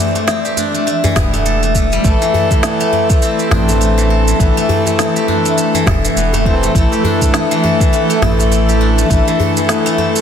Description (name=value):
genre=organic downtempo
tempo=102 BPM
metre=4/4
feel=swing 58% on 16ths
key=A minor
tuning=A4 = 440 Hz
part: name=granular cloud pad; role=sustained chords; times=0.0-10.2 s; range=E3 to D5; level=-20 LUFS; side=right 2 dB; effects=built-in reverb, sidechain pumping, shimmer reverb
part: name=steel-string zither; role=arpeggios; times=0.0-10.2 s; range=E3 to A4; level=-17 LUFS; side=left 2 dB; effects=digital delay, shimmer reverb
part: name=electronic shaker and snare drum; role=drums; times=0.2-10.2 s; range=none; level=-21 LUFS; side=right 2 dB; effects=overdrive
part: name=djembe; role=percussion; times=0.2-10.1 s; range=none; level=-21 LUFS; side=left 1 dB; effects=none
part: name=warm sub bass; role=bass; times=1.2-9.2 s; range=E1 to A1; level=-15 LUFS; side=equal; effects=none
part: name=electronic kick drum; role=drums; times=1.2-9.2 s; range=none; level=-14 LUFS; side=equal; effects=none
part: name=pedal harmonium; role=accompaniment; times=2.0-10.2 s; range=E3 to A4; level=-17 LUFS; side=left 1 dB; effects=sidechain pumping, digital delay, shimmer reverb
room=moderate concert hall reverb, RT60 2.2 s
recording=dense, heavily limited modern master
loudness=-11 LUFS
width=side -8 dB against mid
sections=0.0-2.0 A section; 2.0-10.2 B section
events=none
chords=0.0 Am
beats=0.28 0.87 1.46 | 2.04 2.63 3.22 3.81 | 4.40 4.99 5.57 6.16 | 6.75 7.34 7.93 8.51 | 9.10 9.69